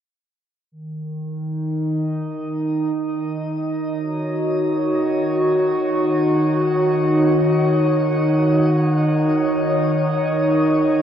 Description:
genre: ambient.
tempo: free time.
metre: none.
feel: none.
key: Eb minor.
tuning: A4 = 440 Hz.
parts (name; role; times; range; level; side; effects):
warbly tape-like pad; solo; 0.7-11.0 s; Eb3 to Db5; -17 LUFS; equal; chorus, built-in reverb, tape echo.
room: wet shimmer reverb, RT60 8.1 s.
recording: worn, warbling old tape, cassette tape, warbly pitch drift.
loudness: -17 LUFS.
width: side -9 dB against mid.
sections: 0.7-11.0 A section.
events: none.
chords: 0.7 Ebm7; 9.0 N.C..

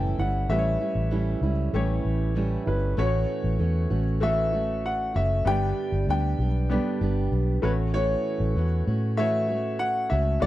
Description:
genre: acoustic pop.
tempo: 97 BPM.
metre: 4/4.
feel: straight.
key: unclear.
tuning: A4 = 438 Hz.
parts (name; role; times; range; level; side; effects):
warm upright piano; melody; 0.0-10.5 s; B4 to G5; -28 LUFS; left 1 dB; slapback echo.
felt-muted upright piano; accompaniment; 0.0-10.5 s; A3 to D5; -35 LUFS; left 6 dB; none.
fingerpicked steel-string acoustic guitar; accompaniment; 0.0-10.5 s; G2 to G4; -30 LUFS; right 4 dB; none.
vintage muted fingered electric bass; bass; 0.0-10.5 s; F#1 to A2; -25 LUFS; equal; none.
room: studio reverb.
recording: dry, close 1970s-style studio recording.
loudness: -23 LUFS.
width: side -15 dB against mid.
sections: 0.0-3.0 A section; 3.0-10.5 B section.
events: none.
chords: 0.0 A7; 3.0 A6; 5.5 G; 7.6 A6.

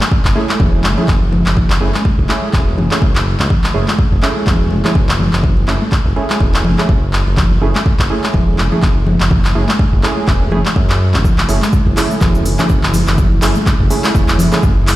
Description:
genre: afro house.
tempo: 124 BPM.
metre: 4/4.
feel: swing 57% on 16ths.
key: F# minor.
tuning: A4 = 440 Hz.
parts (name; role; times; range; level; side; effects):
deep house drum kit; drums; 0.0-15.0 s; handclaps, hi-hat; -19 LUFS; equal; none.
congas; percussion; 0.0-14.7 s; none; -20 LUFS; left 1 dB; none.
electronic kick drum; drums; 0.1-14.7 s; none; -14 LUFS; equal; none.
smooth synth bass; bass; 0.3-15.0 s; E1 to F#2; -16 LUFS; equal; tube saturation, sidechain pumping.
warm analog keys; stabs; 0.4-14.6 s; A3 to G#4; -21 LUFS; right 3 dB; chorus, sidechain pumping, tape echo.
warm analog pad; sustained chords; 11.2-15.0 s; C#3 to E4; -23 LUFS; right 1 dB; chorus, vintage 12-bit sampler grit, sidechain pumping.
cabasa; percussion; 11.2-15.0 s; none; -32 LUFS; right 2 dB; none.
room: light reverb.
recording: played on a big sound system in a bare room, large studio reverb.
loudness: -11 LUFS.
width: side -16 dB against mid.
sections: 0.0-15.0 A section.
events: none.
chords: 0.0 F#m7.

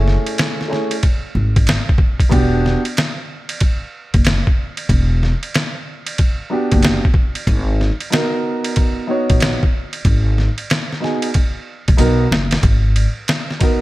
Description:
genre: hip hop, jazz-hop.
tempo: 93 BPM.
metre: 4/4.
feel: swing 63% on 16ths.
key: unclear.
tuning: A4 = 440 Hz.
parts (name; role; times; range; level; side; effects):
dark baby grand piano; accompaniment; 0.0-13.8 s; A3 to C#5; -20 LUFS; right 1 dB; none.
upright bass; bass; 0.0-13.1 s; E1 to B1; -16 LUFS; equal; none.
trip hop sampler-style drum kit; drums; 0.1-13.8 s; hi-hat, kick drum, ride cymbal, snare drum; -17 LUFS; equal; none.
room: little or no reverb.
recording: none.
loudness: -14 LUFS.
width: side -18 dB against mid.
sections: 0.0-12.6 A section; 12.6-13.8 B section.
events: drum fill 12.0-12.6.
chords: 0.0 F#m9 (rootless); 2.3 Em9; 7.5 G#m9.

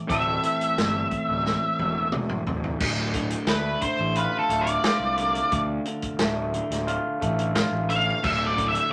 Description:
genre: psychedelic rock.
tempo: 88 BPM.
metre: 4/4.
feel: straight.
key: D minor.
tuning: A4 = 441 Hz.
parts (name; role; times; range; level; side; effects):
electric guitar through a small old amp; riff; 0.0-8.9 s; D2 to A4; -31 LUFS; equal; none.
octave-fuzz lead guitar; melody; 0.1-8.9 s; A4 to F5; -27 LUFS; equal; distortion.
fuzz fingered electric bass; bass; 0.1-8.8 s; D1 to D2; -32 LUFS; equal; overdrive.
vintage drum kit; drums; 0.1-8.9 s; crash cymbal, hi-hat, kick drum, snare drum, toms; -31 LUFS; equal; none.
room: moderate studio ambience, RT60 0.5 s.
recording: none.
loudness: -25 LUFS.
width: mono.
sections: 0.0-2.8 A section; 2.8-8.9 B section.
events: drum fill 1.5-2.8; lead electric guitar solo 2.8-8.9.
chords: 0.0 Am/D; 2.8 Dm.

